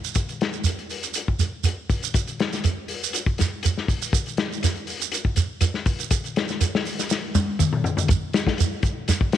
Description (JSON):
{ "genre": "afrobeat", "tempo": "121 BPM", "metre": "4/4", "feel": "straight", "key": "none", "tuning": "none", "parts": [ { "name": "shekere", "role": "percussion", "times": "0.0-9.4 s", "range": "none", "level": "-24 LUFS", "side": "right 4 dB", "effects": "none" }, { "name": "vintage drum kit", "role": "drums", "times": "0.2-9.4 s", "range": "hi-hat, kick drum, snare drum, toms", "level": "-24 LUFS", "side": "left 3 dB", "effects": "none" } ], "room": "light reverb, small room ambience", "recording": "1960s-style stereo", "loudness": "-22 LUFS", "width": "side -11 dB against mid", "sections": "0.0-8.1 A section; 8.1-9.4 B section", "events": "drum fill 7.1-8.1", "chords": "none" }